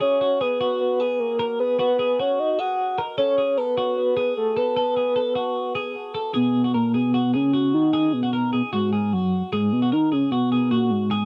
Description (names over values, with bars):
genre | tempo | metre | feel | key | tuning
indie pop | 151 BPM | 4/4 | straight | unclear | A4 = 440 Hz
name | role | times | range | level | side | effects
soft octave-layered synth lead | melody | 0.0-11.3 s | F#3 to F#5 | -23 LUFS | equal | chorus, tremolo
twelve-string electric guitar | arpeggios | 0.0-11.3 s | F#4 to A#4 | -30 LUFS | equal | tape echo
room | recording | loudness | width
little or no reverb | dry, close 1970s-style studio recording | -22 LUFS | mono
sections
0.0-6.3 A section; 6.3-11.3 B section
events
none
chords
0.0 B5; 6.3 G#m11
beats
| 0.01 0.41 0.80 1.20 | 1.59 1.99 2.38 2.78 | 3.18 3.57 3.97 4.36 | 4.76 5.16 5.55 5.95 | 6.34 6.74 7.14 7.53 | 7.93 8.33 8.72 9.12 | 9.52 9.92 10.31 10.71 | 11.11